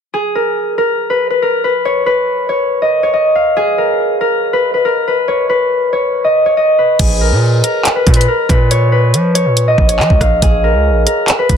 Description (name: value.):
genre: hip hop, drill.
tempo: 140 BPM.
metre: 4/4.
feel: half-time.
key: unclear.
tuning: A4 = 440 Hz.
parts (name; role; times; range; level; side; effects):
concert harp; melody; 0.1-11.6 s; Ab4 to F5; -12 LUFS; left 1 dB; none.
distorted 808-style bass; bass; 7.0-11.6 s; Bb1 to F3; -13 LUFS; right 1 dB; distortion.
drill drum kit; drums; 7.0-11.6 s; crash cymbal, handclaps, hi-hat, kick drum, rim click; -13 LUFS; equal; none.
room: little or no reverb.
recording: dense, heavily limited modern master.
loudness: -10 LUFS.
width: side -7 dB against mid.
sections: 0.1-7.0 A section; 7.0-11.6 B section.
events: none.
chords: 0.1 N.C.; 7.0 Abmadd9/Bb; 8.7 Bbmadd11; 10.4 Bbm.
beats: | 0.14 0.57 0.99 1.42 | 1.85 2.28 2.71 3.14 | 3.57 3.99 4.42 4.85 | 5.28 5.71 6.14 6.57 | 6.99 7.42 7.85 8.28 | 8.71 9.14 9.57 9.99 | 10.42 10.85 11.28.